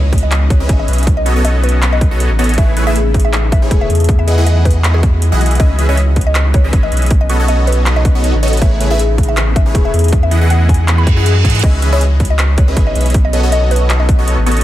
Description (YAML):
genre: future bass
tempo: 159 BPM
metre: 4/4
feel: swing 54% on 16ths, half-time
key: unclear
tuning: A4 = 441 Hz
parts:
  - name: mallet-like synth pluck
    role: melody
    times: 0.0-14.6 s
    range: G#4 to B5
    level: -23 LUFS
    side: equal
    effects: chorus, phaser, sidechain pumping, digital delay
  - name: shimmering ambient pad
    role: sustained chords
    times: 0.0-14.6 s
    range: C#3 to D#5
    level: -25 LUFS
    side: right 1 dB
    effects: chorus, built-in reverb, phaser, sidechain pumping
  - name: concert harp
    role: arpeggios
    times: 0.0-14.6 s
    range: B3 to D#5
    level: -25 LUFS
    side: left 10 dB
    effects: sidechain pumping, dub echo
  - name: saturated sub bass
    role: bass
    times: 0.0-14.6 s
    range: E1 to G#2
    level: -13 LUFS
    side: equal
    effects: sidechain pumping
  - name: impact and reverse cymbal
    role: sound effects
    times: 0.0-1.1, 11.0-11.6 s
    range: none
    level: -24 LUFS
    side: right 4 dB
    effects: none
  - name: electronic kick drum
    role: drums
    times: 0.1-14.2 s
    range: none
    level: -12 LUFS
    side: equal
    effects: overdrive
  - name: trap drum kit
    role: drums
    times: 0.1-14.6 s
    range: crash cymbal, handclaps, hi-hat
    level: -22 LUFS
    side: right 1 dB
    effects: overdrive
  - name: supersaw stab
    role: riff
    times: 0.6-14.6 s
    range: E3 to F#5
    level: -20 LUFS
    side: equal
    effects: phaser, sidechain pumping
room: little or no reverb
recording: none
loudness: -10 LUFS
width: side -14 dB against mid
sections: 0.0-14.6 A section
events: impact 0.0-1.1; reverse cymbal 11.0-11.6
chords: 0.0 C#m9; 1.1 B9; 2.6 Amaj9; 3.9 Emaj9; 5.6 C#m9; 7.1 B9; 8.6 Amaj9; 9.9 Emaj9; 11.6 C#m9; 13.1 B9